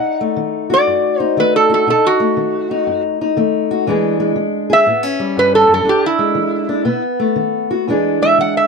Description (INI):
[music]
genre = acoustic country blues, solo or duo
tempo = 120 BPM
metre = 4/4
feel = swing 65% on 8ths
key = unclear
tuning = A4 = 440 Hz
[part]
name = metal-body resonator slide guitar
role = melody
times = 0.0-8.7 s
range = E4 to F#5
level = -14 LUFS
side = right 2 dB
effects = none
[part]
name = fingerpicked steel-string acoustic guitar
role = accompaniment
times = 0.0-8.7 s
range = E2 to G#4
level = -16 LUFS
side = left 3 dB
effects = none
[sound]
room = light reverb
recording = close, detailed microphones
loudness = -13 LUFS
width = side -4 dB against mid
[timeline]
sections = 0.0-7.9 A section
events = resonator guitar played with a steel bar solo 0.0-7.9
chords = 0.0 B7; 3.9 E7; 4.9 A7; 5.9 E7; 6.9 B7; 7.9 E7